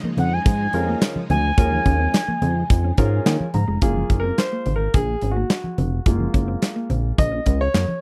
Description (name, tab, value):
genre	early-eighties boogie funk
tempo	107 BPM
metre	4/4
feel	straight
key	unclear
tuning	A4 = 436 Hz
part	string machine, violins	sustained chords	0.0-3.8 s	Db3 to Eb4	-37 LUFS	equal	ensemble chorus
part	mellow electric guitar	riff	0.0-7.9 s	Ab3 to Db4	-31 LUFS	equal	subtle chorus
part	congas	percussion	0.0-8.0 s	none	-30 LUFS	equal	none
part	expressive synth lead	melody	0.2-3.2 s	Gb5 to Ab5	-26 LUFS	equal	chorus
part	chorused synth bass	bass	0.2-7.9 s	F1 to Eb3	-24 LUFS	equal	none
part	modern studio drum kit	drums	0.2-7.9 s	handclaps, hi-hat, kick drum, snare drum	-21 LUFS	equal	none
part	warm grand piano	accompaniment	0.7-8.0 s	Ab3 to Bb5	-28 LUFS	equal	none
room	little or no reverb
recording	dry, close 1970s-style studio recording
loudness	-20 LUFS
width	mono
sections	0.0-3.8 A section; 3.8-8.0 B section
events	grand piano fill 2.7-3.8; grand piano solo 3.8-8.0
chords	0.0 Eb9sus4; 3.8 Gbmaj7